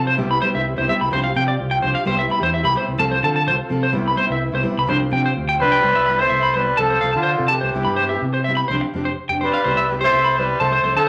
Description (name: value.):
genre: highlife guitar band.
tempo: 127 BPM.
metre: 4/4.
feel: straight.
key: C major.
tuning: A4 = 440 Hz.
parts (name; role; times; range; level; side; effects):
nylon-string guitar; accompaniment; 0.0-11.0 s; F3 to A4; -28 LUFS; equal; none.
combo organ; sustained chords; 0.0-5.8 s; C4 to B4; -33 LUFS; equal; none.
fingered electric bass; bass; 0.0-11.1 s; F1 to D3; -27 LUFS; equal; none.
electric guitar at the edge of break-up; arpeggios; 0.1-11.1 s; C5 to B5; -22 LUFS; equal; harmonic tremolo.
dark trumpet; melody; 5.6-11.1 s; F4 to C5; -20 LUFS; equal; none.
breathy tenor saxophone; second line; 5.6-11.1 s; D3 to A3; -31 LUFS; equal; none.
room: moderate large studio reverb, RT60 0.8 s.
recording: nothing above 11.0 kHz.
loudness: -19 LUFS.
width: mono.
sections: 0.0-5.8 A section; 5.8-11.1 B section.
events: none.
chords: 0.2 Cmaj7; 1.1 G7sus4/C; 2.1 Cmaj7; 3.0 F/C; 3.9 Cmaj7; 4.9 G7sus4/C; 5.8 Cmaj7; 6.8 F/C; 7.7 Cmaj7; 8.7 G7sus4; 9.6 Cmaj7.